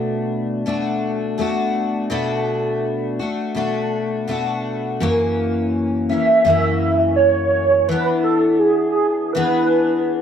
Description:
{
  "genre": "indie pop",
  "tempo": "83 BPM",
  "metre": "4/4",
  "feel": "straight",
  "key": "B dorian",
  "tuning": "A4 = 440 Hz",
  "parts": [
    { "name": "picked steel-string acoustic guitar", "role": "accompaniment", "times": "0.0-10.2 s", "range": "F#2 to G#4", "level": "-19 LUFS", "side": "left 2 dB", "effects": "analog chorus, vibrato effect" },
    { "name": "warbly nostalgic lead", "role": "melody", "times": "6.1-10.2 s", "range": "G#4 to E5", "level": "-16 LUFS", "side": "right 2 dB", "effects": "ensemble chorus, slapback echo" }
  ],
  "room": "moderate small room reverb, RT60 0.5 s",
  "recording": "none",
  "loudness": "-17 LUFS",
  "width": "side -8 dB against mid",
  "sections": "0.0-5.0 A section; 5.0-10.2 B section",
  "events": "none",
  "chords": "0.0 Bm7; 5.0 F#7; 7.9 E7",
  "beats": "0.67 1.39 | 2.12 2.84 3.56 4.29 | 5.01 5.74 6.46 7.19 | 7.91 8.63 9.36 10.08"
}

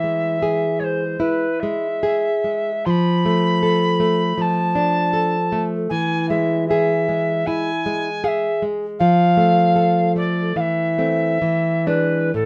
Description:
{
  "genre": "romantic duo for recorder and classical guitar",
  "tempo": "61-82 BPM",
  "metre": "4/4",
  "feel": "rubato",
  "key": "unclear",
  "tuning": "A4 = 440 Hz",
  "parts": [
    { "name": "alto recorder", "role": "melody", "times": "0.0-12.5 s", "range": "A4 to C6", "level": "-23 LUFS", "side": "equal", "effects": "none" },
    { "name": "nylon-string guitar", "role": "accompaniment", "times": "0.0-12.5 s", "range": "A2 to A4", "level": "-22 LUFS", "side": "equal", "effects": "none" }
  ],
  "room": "light reverb",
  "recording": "none",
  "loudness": "-19 LUFS",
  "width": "mono",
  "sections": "0.0-12.5 A section",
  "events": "none",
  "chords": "0.0 E; 2.9 Dm/F; 5.9 E; 9.0 F6; 10.6 Am/E; 11.4 E7",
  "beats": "0.42 1.20 2.02 | 2.87 3.62 4.37 5.13 | 5.90 6.69 7.47 8.24 | 9.00 9.77 10.57 11.42 | 12.34"
}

